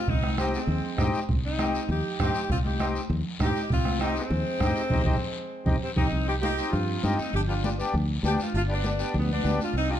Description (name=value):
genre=latin, cumbia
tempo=199 BPM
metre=4/4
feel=straight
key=C minor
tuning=A4 = 442 Hz
part: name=clear saxophone section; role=melody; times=0.0-10.0 s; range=G3 to G4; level=-30 LUFS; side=right 1 dB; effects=slapback echo
part: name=fingered electric bass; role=bass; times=0.1-10.0 s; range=G1 to G2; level=-28 LUFS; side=equal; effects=none
part: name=bombo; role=percussion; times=0.1-6.0 s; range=none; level=-29 LUFS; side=right 2 dB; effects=none
part: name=guiro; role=percussion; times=0.1-10.0 s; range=none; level=-41 LUFS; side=left 6 dB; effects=none
part: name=congas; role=percussion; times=0.2-9.9 s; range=none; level=-33 LUFS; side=left 1 dB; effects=none
part: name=accordion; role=accompaniment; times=0.4-9.9 s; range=B3 to G4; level=-32 LUFS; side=left 3 dB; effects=none
room=light reverb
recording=dark, warm production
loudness=-24 LUFS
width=side -10 dB against mid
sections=0.0-6.1 A section; 6.1-10.0 B section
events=band accent 4.9-6.1; drum fill 5.4-6.1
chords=0.0 Cm; 7.3 G7